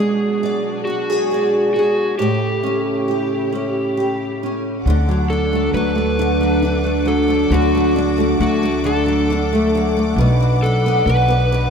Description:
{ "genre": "pop", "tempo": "45 BPM (dotted quarters)", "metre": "6/8", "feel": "straight", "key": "unclear", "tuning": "A4 = 440 Hz", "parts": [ { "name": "overdriven slide guitar", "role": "melody", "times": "0.0-11.7 s", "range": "F#4 to B4", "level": "-23 LUFS", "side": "equal", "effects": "none" }, { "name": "picked steel-string acoustic guitar", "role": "accompaniment", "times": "0.0-11.7 s", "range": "A2 to D5", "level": "-18 LUFS", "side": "equal", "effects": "double-tracked left and right" }, { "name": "rich studio string section", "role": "sustained chords", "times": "0.0-11.7 s", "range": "B2 to D6", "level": "-28 LUFS", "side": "left 1 dB", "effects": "none" }, { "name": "upright bass", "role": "bass", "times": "4.9-11.7 s", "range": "B1 to D2", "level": "-19 LUFS", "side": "equal", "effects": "none" } ], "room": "moderate lush hall reverb, RT60 2.5 s", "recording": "rough home demo mix", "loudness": "-15 LUFS", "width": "side -6 dB against mid", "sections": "0.0-4.9 A section; 4.9-11.7 B section", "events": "none", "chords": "0.0 G#m7b5; 2.2 A7; 4.9 D; 10.2 Bm" }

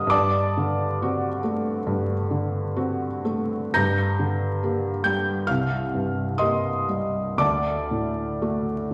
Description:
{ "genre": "classical, romantic nocturne for solo piano", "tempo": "57-70 BPM", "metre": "4/4", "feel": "rubato", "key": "unclear", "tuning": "A4 = 440 Hz", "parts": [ { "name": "felt-muted upright piano", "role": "solo", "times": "0.0-8.9 s", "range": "C2 to Bb6", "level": "-24 LUFS", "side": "equal", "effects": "none" } ], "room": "wet recital hall reverb, RT60 1.4 s", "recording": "heard from further back in the room, vinyl crackle", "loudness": "-25 LUFS", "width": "mono", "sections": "0.0-8.9 A section", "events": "none", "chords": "0.1 D7/G; 3.7 Gm; 5.5 Cm7; 7.4 D" }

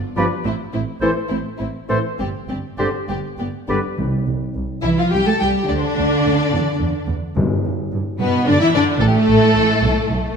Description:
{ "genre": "quick classical-period movement for symphony orchestra", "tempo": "66-75 BPM (dotted quarters)", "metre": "6/8", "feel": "rubato", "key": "C major", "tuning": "A4 = 440 Hz", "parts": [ { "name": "warm studio violin section", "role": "melody", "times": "0.2-10.4 s", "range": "G4 to A5", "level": "-24 LUFS", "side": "left 3 dB", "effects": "none" }, { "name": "clear clarinet", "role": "second line", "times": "0.2-3.8 s", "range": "G4 to A4", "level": "-31 LUFS", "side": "left 3 dB", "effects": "none" }, { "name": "clear oboe", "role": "second line", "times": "0.2-3.8 s", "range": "C5 to D5", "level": "-32 LUFS", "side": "right 1 dB", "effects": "none" }, { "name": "concert flute", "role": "second line", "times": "0.2-3.8 s", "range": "B5 to C6", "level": "-32 LUFS", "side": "left 4 dB", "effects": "none" }, { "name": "warm studio violin section", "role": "second line", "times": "0.2-10.3 s", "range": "A3 to A4", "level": "-23 LUFS", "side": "left 5 dB", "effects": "none" }, { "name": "mellow bassoon", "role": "accompaniment", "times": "0.2-3.8 s", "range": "D3 to F3", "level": "-28 LUFS", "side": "right 1 dB", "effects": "none" }, { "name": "rich studio viola section", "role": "accompaniment", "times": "0.2-10.4 s", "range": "A3 to A4", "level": "-23 LUFS", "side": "right 1 dB", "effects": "none" }, { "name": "mellow French horn section", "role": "sustained chords", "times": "0.2-3.8 s", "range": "E3 to E4", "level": "-29 LUFS", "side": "left 6 dB", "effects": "none" }, { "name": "dark trumpet section", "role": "stabs", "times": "0.2-3.8 s", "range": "B4 to C5", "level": "-28 LUFS", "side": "right 1 dB", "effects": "none" }, { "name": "rich studio double bass section", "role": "bass", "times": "0.2-10.2 s", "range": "G1 to G2", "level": "-24 LUFS", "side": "right 3 dB", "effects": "none" }, { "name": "warm studio cello section", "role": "bass", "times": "0.2-10.4 s", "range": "G2 to A3", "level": "-22 LUFS", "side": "right 3 dB", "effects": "none" }, { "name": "timpani", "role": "percussion", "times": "4.0-8.2 s", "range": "G2 to C3", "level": "-23 LUFS", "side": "left 1 dB", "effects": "none" } ], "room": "moderate scoring stage reverb, RT60 1.6 s", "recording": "none", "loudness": "-16 LUFS", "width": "side -6 dB against mid", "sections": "0.0-4.0 A section; 4.0-10.4 B section", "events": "none", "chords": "0.4 Am; 2.2 Gsus4; 3.1 G; 4.0 C; 5.7 N.C.; 6.5 Dsus2; 7.4 G; 9.0 N.C.; 9.8 Asus2" }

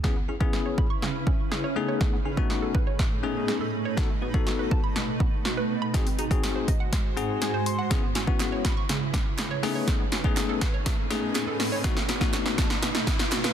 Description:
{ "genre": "dance-pop", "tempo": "122 BPM", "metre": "4/4", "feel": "straight", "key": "C# minor", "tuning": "A4 = 441 Hz", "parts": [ { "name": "bell-like tine electric piano", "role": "accompaniment", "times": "0.0-12.7 s", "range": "A3 to B#5", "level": "-31 LUFS", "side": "left 8 dB", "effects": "none" }, { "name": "granular cloud pad", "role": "sustained chords", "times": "0.6-13.5 s", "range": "G#2 to B#4", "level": "-32 LUFS", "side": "right 2 dB", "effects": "built-in reverb, sidechain pumping" }, { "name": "hollow square pluck", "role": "arpeggios", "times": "0.0-13.5 s", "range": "B2 to C#6", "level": "-35 LUFS", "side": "right 5 dB", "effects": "chorus, sidechain pumping, tape echo" }, { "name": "punchy analog drum machine", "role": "drums", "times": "0.0-13.5 s", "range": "hi-hat, kick drum, snare drum", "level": "-25 LUFS", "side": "equal", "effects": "soft clipping on snare" }, { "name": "riser", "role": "sound effects", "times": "9.8-13.5 s", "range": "none", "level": "-36 LUFS", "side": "right 1 dB", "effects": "none" }, { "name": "group handclap", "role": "percussion", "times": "8.4-13.4 s", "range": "none", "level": "-39 LUFS", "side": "right 9 dB", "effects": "none" } ], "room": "light reverb", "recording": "dense, heavily limited modern master", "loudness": "-24 LUFS", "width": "side -9 dB against mid", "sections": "0.0-13.5 A section", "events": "build-up 0.0-13.5; drum fill 0.0-13.5; tine electric piano fill 6.9-7.9; riser 9.8-13.5", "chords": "0.0 C#m7; 1.8 Amaj9#11; 4.0 B7; 5.9 G#7; 7.9 C#m7; 9.6 Amaj9#11; 11.8 B7" }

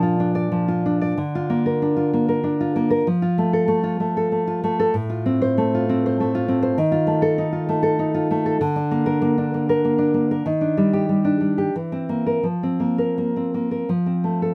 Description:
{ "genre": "romantic piece for solo classical guitar", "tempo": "81-105 BPM", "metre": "3/4", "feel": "rubato", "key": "Bb major", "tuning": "A4 = 443 Hz", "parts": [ { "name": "nylon-string guitar", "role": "solo", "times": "0.0-14.5 s", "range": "A2 to D5", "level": "-21 LUFS", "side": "equal", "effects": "none" } ], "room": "light reverb", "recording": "close, detailed microphones", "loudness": "-21 LUFS", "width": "mono", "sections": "0.0-14.5 A section", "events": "none", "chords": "0.0 Bb; 1.2 Bb/D; 3.1 F; 4.9 F/A; 6.8 F7/Eb; 8.6 Bb/D; 10.5 Ebmaj7; 11.7 C7/E; 12.4 Fsus4; 13.9 F" }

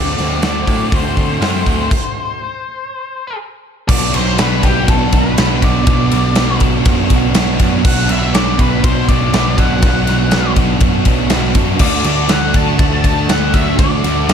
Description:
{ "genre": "rock, shoegaze and dream pop", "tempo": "121 BPM", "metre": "4/4", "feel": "straight", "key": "unclear", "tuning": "A4 = 440 Hz", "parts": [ { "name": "octave-fuzz lead guitar", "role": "melody", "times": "0.0-14.3 s", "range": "G4 to A5", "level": "-21 LUFS", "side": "left 2 dB", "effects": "distortion, slapback echo" }, { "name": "string machine, violas", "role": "sustained chords", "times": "0.0-1.9 s", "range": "C5 to D6", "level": "-32 LUFS", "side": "equal", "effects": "none" }, { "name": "crunchy overdriven guitar", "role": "riff", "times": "0.0-14.3 s", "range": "B2 to F#4", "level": "-21 LUFS", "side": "left 12 dB", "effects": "lush chorus" }, { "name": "crunchy overdriven guitar", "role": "riff", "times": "0.0-14.3 s", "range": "B2 to F#4", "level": "-19 LUFS", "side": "right 12 dB", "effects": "reverse reverb" }, { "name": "fuzz picked electric bass", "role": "bass", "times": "0.0-14.3 s", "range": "B1 to A2", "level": "-18 LUFS", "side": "equal", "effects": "overdrive" }, { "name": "big rock drum kit", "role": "drums", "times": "0.2-14.3 s", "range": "crash cymbal, hi-hat, kick drum, ride cymbal, snare drum", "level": "-15 LUFS", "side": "equal", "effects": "none" } ], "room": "little or no reverb", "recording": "none", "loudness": "-11 LUFS", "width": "side -7 dB against mid", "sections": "0.0-3.9 A section; 3.9-14.3 B section", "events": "stop 1.9-3.9", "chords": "0.0 D7; 3.9 Bm; 11.8 D" }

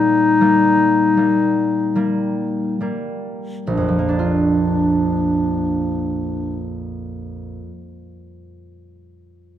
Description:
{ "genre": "classical, romantic duo for clarinet and harp", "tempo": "33-41 BPM", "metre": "3/4", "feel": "rubato", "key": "Bb major", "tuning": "A4 = 439 Hz", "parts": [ { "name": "mellow clarinet", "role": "melody", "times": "0.0-6.6 s", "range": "D4 to Eb4", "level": "-18 LUFS", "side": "left 4 dB", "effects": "none" }, { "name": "concert harp", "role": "accompaniment", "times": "0.0-7.7 s", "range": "Bb1 to F4", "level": "-21 LUFS", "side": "right 2 dB", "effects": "none" } ], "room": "moderate concert hall reverb, RT60 1.9 s", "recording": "close, detailed microphones", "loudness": "-16 LUFS", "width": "side -10 dB against mid", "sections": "0.0-3.7 A section; 3.7-8.6 B section", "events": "slowing down 0.0-3.7", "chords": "0.0 Eb/Bb; 3.7 Bb" }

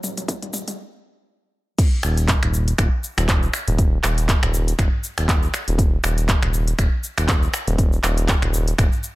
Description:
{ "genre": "afro house", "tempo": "120 BPM", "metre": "4/4", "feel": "swing 56% on 16ths", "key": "unclear", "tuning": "A4 = 440 Hz", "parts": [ { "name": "smooth synth bass", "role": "bass", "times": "0.0-8.9 s", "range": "Eb1", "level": "-21 LUFS", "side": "equal", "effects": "sidechain pumping" }, { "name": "afro-pop drum kit", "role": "drums", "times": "0.0-9.1 s", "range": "crash cymbal, finger snaps, handclaps, hi-hat, shaker, toms", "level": "-24 LUFS", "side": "equal", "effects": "none" }, { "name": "electronic kick drum", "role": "drums", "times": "0.3-8.9 s", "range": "none", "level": "-19 LUFS", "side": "equal", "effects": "none" } ], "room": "little or no reverb", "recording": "high-pass filter", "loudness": "-18 LUFS", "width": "side -19 dB against mid", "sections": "0.0-1.8 A section; 1.8-9.2 B section", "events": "build-up 0.0-1.8; drum fill 0.0-0.8; filter sweep 0.0-1.8; stop 0.8-1.8; drop 1.8-9.2", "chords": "none" }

